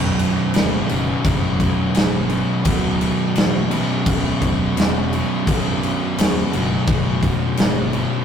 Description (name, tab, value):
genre	stoner and doom metal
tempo	85 BPM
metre	4/4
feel	straight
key	B minor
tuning	A4 = 438 Hz
part	string machine, violins	sustained chords	0.0-8.2 s	none	barely audible	none	none
part	crunchy overdriven guitar	riff	0.0-8.2 s	B1 to B2	-27 LUFS	right 2 dB	none
part	thick fuzz guitar	riff	0.0-8.2 s	B1 to B2	-23 LUFS	left 3 dB	distortion
part	thick fuzz guitar	riff	0.0-8.2 s	B1 to B2	-24 LUFS	right 2 dB	distortion
part	overdriven fingered electric bass	bass	0.0-8.0 s	B0 to A1	-27 LUFS	equal	none
part	big rock drum kit	drums	0.2-8.1 s	crash cymbal, kick drum, snare drum	-20 LUFS	equal	none
room	light reverb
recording	rough rehearsal-room recording, tube saturation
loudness	-16 LUFS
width	side -8 dB against mid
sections	0.0-8.2 A section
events	none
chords	0.0 Bm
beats	0.55 1.25 1.95 | 2.66 3.36 4.06 4.76 | 5.47 6.17 6.87 7.58